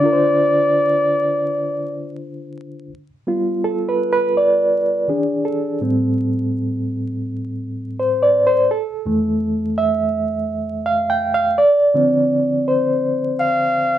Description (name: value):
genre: R&B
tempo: 83 BPM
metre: 4/4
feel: swing 58% on 16ths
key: D minor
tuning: A4 = 435 Hz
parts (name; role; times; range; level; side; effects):
- mellow flugelhorn; melody; 0.0-2.2, 13.4-14.0 s; D5 to F5; -16 LUFS; equal; none
- bright reed electric piano; accompaniment; 0.0-14.0 s; F2 to G5; -17 LUFS; equal; fast tremolo
room: wet small room ambience, RT60 0.5 s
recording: band playing live in one room, vinyl crackle, nothing above 10.7 kHz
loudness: -16 LUFS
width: side -11 dB against mid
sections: 0.0-2.9 A section; 2.9-14.0 B section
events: reed electric piano solo 2.9-14.0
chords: 0.0 Dm7; 2.9 G7; 5.1 E7; 5.8 Am7; 8.7 Fmaj7; 11.6 Dm7